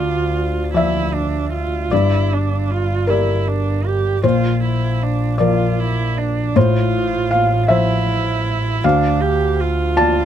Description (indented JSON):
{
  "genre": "neoclassical piano and strings",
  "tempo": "52 BPM (dotted quarters)",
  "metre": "6/8",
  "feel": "rubato",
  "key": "D minor",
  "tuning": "A4 = 441 Hz",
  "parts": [
    { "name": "dark cello", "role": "second line", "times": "0.0-10.2 s", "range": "D4 to G4", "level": "-22 LUFS", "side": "right 5 dB", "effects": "none" },
    { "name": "felt-muted upright piano", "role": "accompaniment", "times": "0.0-10.2 s", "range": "D2 to A5", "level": "-18 LUFS", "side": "left 2 dB", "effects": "none" },
    { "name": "dark double bass", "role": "bass", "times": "0.0-10.2 s", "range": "G1 to D2", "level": "-21 LUFS", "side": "right 1 dB", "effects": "none" }
  ],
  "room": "little or no reverb",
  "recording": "close, detailed microphones",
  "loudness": "-15 LUFS",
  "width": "side -10 dB against mid",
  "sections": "0.0-10.2 A section",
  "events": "none",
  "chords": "0.0 Dm; 1.9 Gm; 4.2 Bb; 6.6 F/A; 8.8 Dm",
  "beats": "0.74 | 1.91 3.08 | 4.23 5.39 | 6.56 7.70 | 8.83 9.97"
}